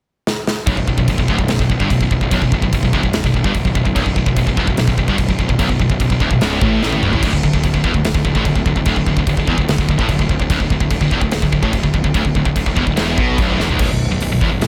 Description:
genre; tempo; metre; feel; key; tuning
heavy metal; 146 BPM; 4/4; straight; B minor; A4 = 439 Hz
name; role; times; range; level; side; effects
big rock drum kit; drums; 0.3-14.7 s; crash cymbal, hi-hat, kick drum, snare drum, toms; -21 LUFS; equal; none
distorted electric guitar; riff; 0.7-14.7 s; B1 to B2; -24 LUFS; equal; overdrive
distorted electric guitar; riff; 0.7-13.8 s; B1 to B2; -26 LUFS; equal; none
scooped high-gain guitar; riff; 0.7-14.7 s; B1 to B2; -24 LUFS; equal; distortion
fuzz picked electric bass; bass; 0.7-14.7 s; B0 to B1; -23 LUFS; equal; overdrive
room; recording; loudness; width
little or no reverb; dense, heavily limited modern master; -16 LUFS; mono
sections
0.7-13.8 A section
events
drum fill 0.3-0.7, 6.8-7.2, 13.6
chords
0.0 N.C.; 0.7 Bm; 7.2 D5; 13.8 N.C.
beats
0.27 | 0.68 1.09 1.50 1.91 | 2.32 2.73 3.14 3.55 | 3.96 4.37 4.78 5.19 | 5.59 6.00 6.41 6.82 | 7.23 7.64 8.05 8.46 | 8.87 9.27 9.68 10.09 | 10.50 10.91 11.32 11.73 | 12.14 12.56 12.97 13.38 | 13.79 14.21 14.62

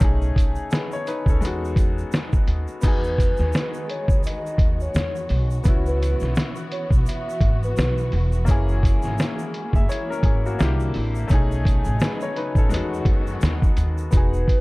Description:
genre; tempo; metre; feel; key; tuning
lo-fi hip hop; 85 BPM; 4/4; swing 58% on 16ths; E major; A4 = 440 Hz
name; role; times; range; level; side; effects
bright upright piano; accompaniment; 0.0-14.6 s; G#3 to E5; -29 LUFS; left 3 dB; cassette tape, low-pass filter
upright bass; bass; 0.0-14.4 s; E1 to F#2; -24 LUFS; equal; none
lo-fi sampler-style drum kit; drums; 0.0-14.6 s; crash cymbal, hi-hat, kick drum, snare drum; -20 LUFS; equal; none
tube shaker; percussion; 0.2-14.5 s; none; -48 LUFS; right 7 dB; none
hollow clarinet-like synth lead; melody; 2.8-8.4, 14.1-14.6 s; B4 to E5; -29 LUFS; equal; chorus, low-pass filter
warm studio string section; sustained chords; 2.8-14.1 s; C#3 to F#4; -34 LUFS; equal; low-pass filter
room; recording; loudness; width
small room ambience; dark, warm production; -19 LUFS; side -23 dB against mid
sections
0.0-2.8 A section; 2.8-14.1 B section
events
none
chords
0.0 B13; 1.4 Emaj9; 5.7 C#m7; 8.5 F#9; 10.6 C9; 11.3 B13; 12.7 Emaj9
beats
| 0.01 0.71 1.42 2.12 | 2.83 3.54 4.24 4.95 | 5.65 6.36 7.06 7.77 | 8.48 9.18 9.89 10.59 | 11.30 12.01 12.71 13.42 | 14.12

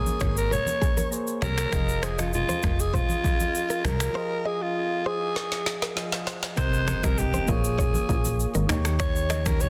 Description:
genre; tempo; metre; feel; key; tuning
afrobeats; 99 BPM; 4/4; straight; Bb dorian; A4 = 440 Hz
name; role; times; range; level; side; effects
breathy alto saxophone; melody; 0.0-9.7 s; F4 to Db5; -31 LUFS; equal; digital delay
soft electric-piano-like synth keys; accompaniment; 0.0-9.7 s; Eb3 to Eb5; -36 LUFS; equal; chorus, tremolo
plucky analog bass; bass; 0.0-9.7 s; F1 to Eb2; -29 LUFS; equal; none
afro-pop drum kit; drums; 0.1-9.7 s; finger snaps, kick drum, rim click, shaker, snare drum; -30 LUFS; equal; soft clipping on snare
congas; percussion; 0.1-9.7 s; none; -36 LUFS; equal; none
direct-recorded clean electric guitar; riff; 0.2-9.4 s; Ab4 to Eb5; -38 LUFS; equal; none
impact; sound effects; 6.7-9.0 s; none; -40 LUFS; equal; none
room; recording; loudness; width
little or no reverb; dense, heavily limited modern master; -26 LUFS; mono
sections
0.0-6.6 A section; 6.6-9.7 B section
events
break 4.2-6.6; drum fill 5.4-6.6; impact 6.6-9.0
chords
0.0 Bbm9; 1.7 Fm7; 6.6 Cm7; 7.5 Bbm7; 8.7 Eb7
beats
0.51 1.12 | 1.73 2.33 2.94 3.54 | 4.15 4.76 5.36 5.97 | 6.57 7.18 7.79 8.39 | 9.00 9.61

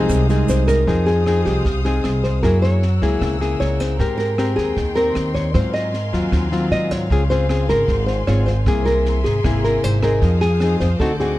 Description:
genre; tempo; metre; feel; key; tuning
bossa nova; 154 BPM; 4/4; straight; F minor; A4 = 439 Hz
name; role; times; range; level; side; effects
bright tine electric piano; accompaniment; 0.0-0.9 s; G3 to Ab4; -23 LUFS; right 6 dB; none
nylon-string guitar; accompaniment; 0.0-11.4 s; Ab2 to Bb4; -21 LUFS; left 2 dB; none
clear studio string section; sustained chords; 0.0-11.4 s; C4 to Fb6; -32 LUFS; left 2 dB; none
upright bass; bass; 0.0-11.4 s; Ab1 to Ab2; -20 LUFS; equal; none
compact cocktail drum kit; drums; 0.1-11.2 s; kick drum, rim click, snare drum; -26 LUFS; right 1 dB; none
egg shaker; percussion; 0.1-0.9 s; none; -37 LUFS; right 5 dB; none
nylon-string guitar; melody; 0.5-11.4 s; G4 to Eb5; -22 LUFS; equal; none
room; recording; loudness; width
little or no reverb; close, detailed microphones; -16 LUFS; side -16 dB against mid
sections
0.9-11.4 A section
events
none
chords
0.0 Fm7; 2.4 Gb9; 4.0 Abmaj9; 5.5 Ab13; 7.1 Dbmaj7; 8.7 C7b13; 10.2 Fm7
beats
0.10 0.48 | 0.87 1.26 1.65 2.04 | 2.43 2.82 3.21 3.60 | 3.99 4.38 4.77 5.16 | 5.55 5.94 6.33 6.72 | 7.11 7.49 7.88 8.27 | 8.66 9.05 9.44 9.83 | 10.22 10.61 11.00 11.39

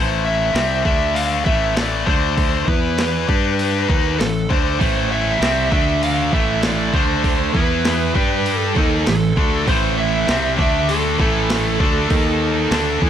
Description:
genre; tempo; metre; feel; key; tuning
hard rock; 99 BPM; 4/4; straight; A minor; A4 = 440 Hz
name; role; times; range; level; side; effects
smooth overdriven lead guitar; melody; 0.0-13.1 s; A4 to F5; -22 LUFS; right 3 dB; none
high-gain distorted guitar; riff; 0.0-13.1 s; A2 to G4; -21 LUFS; left 9 dB; distortion
fuzz fingered electric bass; bass; 0.0-13.1 s; A1 to G2; -23 LUFS; equal; overdrive
boom bap sampler-style drum kit; drums; 0.6-13.1 s; hi-hat, kick drum, snare drum; -21 LUFS; equal; none
scooped high-gain guitar; riff; 4.8-13.1 s; A2 to G4; -22 LUFS; right 12 dB; distortion
room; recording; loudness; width
little or no reverb; none; -15 LUFS; side -9 dB against mid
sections
0.0-13.1 A section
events
none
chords
0.0 Am; 0.9 D5; 1.5 A5; 2.1 D5; 2.7 E5; 3.3 G5; 3.9 Am; 5.7 D5; 6.3 A5; 6.9 D5; 7.5 E5; 8.2 G5; 8.8 Am; 10.6 D5; 11.2 A5; 12.1 D#5; 12.7 D5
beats
0.55 1.16 1.77 | 2.38 2.98 3.59 4.20 | 4.81 5.42 6.03 6.63 | 7.24 7.85 8.46 9.07 | 9.68 10.29 10.89 11.50 | 12.11 12.72

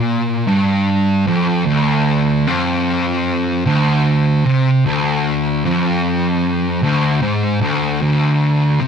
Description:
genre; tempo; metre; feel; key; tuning
metal; 76 BPM; 4/4; straight; D minor; A4 = 440 Hz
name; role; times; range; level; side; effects
fuzz guitar; solo; 0.0-8.9 s; D2 to C3; -14 LUFS; equal; distortion
room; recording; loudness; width
moderate small room reverb, RT60 0.5 s; rough rehearsal-room recording, tube saturation; -14 LUFS; side -7 dB against mid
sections
0.0-8.0 A section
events
none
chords
none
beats
0.08 0.88 | 1.68 2.47 3.27 4.06 | 4.86 5.65 6.44 7.24 | 8.03 8.82

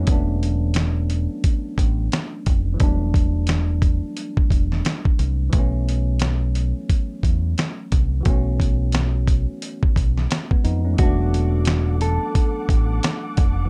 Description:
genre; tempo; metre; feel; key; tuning
hip hop, boom-bap hip-hop; 88 BPM; 4/4; swing 61% on 16ths; unclear; A4 = 439 Hz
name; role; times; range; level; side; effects
tine electric piano; accompaniment; 0.0-13.7 s; E3 to F#4; -31 LUFS; equal; overdrive, high-pass filter, low-pass filter
deep dub fingered electric bass; bass; 0.0-13.7 s; E1 to F2; -23 LUFS; equal; none
dusty soul sampler-style drum kit; drums; 0.1-13.6 s; hi-hat, kick drum, snare drum; -22 LUFS; equal; none
mellow electric guitar; melody; 11.0-13.2 s; F#4 to A4; -31 LUFS; equal; high-pass filter, low-pass filter, tape echo
warm studio string section; sustained chords; 11.0-13.7 s; A4 to D6; -38 LUFS; equal; high-pass filter, low-pass filter
room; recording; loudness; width
little or no reverb; dark, warm production; -21 LUFS; mono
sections
0.0-11.0 A section; 11.0-13.7 B section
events
none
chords
0.1 E9sus4; 5.5 B9sus4; 11.0 E9sus4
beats
| 0.08 0.76 1.44 2.12 | 2.80 3.48 4.17 4.85 | 5.53 6.21 6.89 7.58 | 8.26 8.94 9.62 10.30 | 10.98 11.67 12.35 13.03

